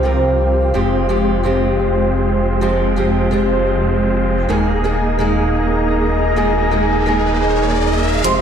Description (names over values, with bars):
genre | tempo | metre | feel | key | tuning
EDM, festival progressive house | 128 BPM | 4/4 | straight | unclear | A4 = 442 Hz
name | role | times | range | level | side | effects
fingerpicked old ladder-braced acoustic guitar | accompaniment | 0.0-8.4 s | C3 to Bb4 | -19 LUFS | right 2 dB | ping-pong delay
lush unison pad | sustained chords | 0.0-8.4 s | G4 to C6 | -24 LUFS | left 2 dB | chorus
big supersaw lead | riff | 0.0-8.4 s | Ab3 to C5 | -19 LUFS | equal | low-pass filter, ping-pong delay
detuned saw bass | bass | 0.0-8.4 s | Eb1 to C2 | -20 LUFS | equal | none
riser | sound effects | 6.0-8.4 s | none | -24 LUFS | equal | none
wide unison lead | arpeggios | 8.2-8.4 s | C6 | -16 LUFS | right 2 dB | none
electronic hi-hat | drums | 8.2-8.3 s | none | -22 LUFS | right 1 dB | none
room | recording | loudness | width
light reverb, digital ambience | played on a big sound system in a bare room, stone room reverb | -14 LUFS | side -8 dB against mid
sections
0.0-8.2 A section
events
riser 6.0-8.2, 8.2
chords
0.0 Csus4; 0.7 Fmadd9; 4.5 Ebsus4